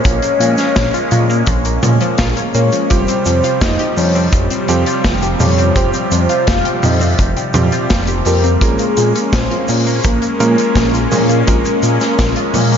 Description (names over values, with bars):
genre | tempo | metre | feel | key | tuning
synthwave | 84 BPM | 4/4 | straight | unclear | A4 = 441 Hz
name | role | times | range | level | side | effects
soft octave-layered synth lead | melody | 0.0-12.8 s | Ab4 to F5 | -19 LUFS | left 1 dB | chorus, phaser, tape echo, shimmer reverb, slapback echo
phased analog pad | sustained chords | 0.0-12.8 s | C3 to Db4 | -20 LUFS | left 1 dB | phaser, chorus, sidechain pumping, shimmer reverb
analog pluck | arpeggios | 0.0-12.8 s | F3 to G4 | -23 LUFS | left 2 dB | chorus, phaser, tape echo, shimmer reverb, slapback echo
big rock drum kit | drums | 0.0-12.8 s | hi-hat, shaker, snare drum, toms | -20 LUFS | equal | none
fat analog bass | bass | 0.1-12.8 s | F1 to Bb2 | -16 LUFS | equal | none
kick drum | drums | 0.1-12.3 s | none | -18 LUFS | equal | none
warm electric grand piano | stabs | 2.9-12.8 s | G3 to Bb4 | -21 LUFS | right 3 dB | tape echo, shimmer reverb
room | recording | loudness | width
moderate lush hall reverb, RT60 2.7 s | big arena sound, nothing above 7.5 kHz | -12 LUFS | side -8 dB against mid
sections
0.0-12.8 A section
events
none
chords
0.0 Bbm7; 2.9 Fsus2; 8.6 Bbm7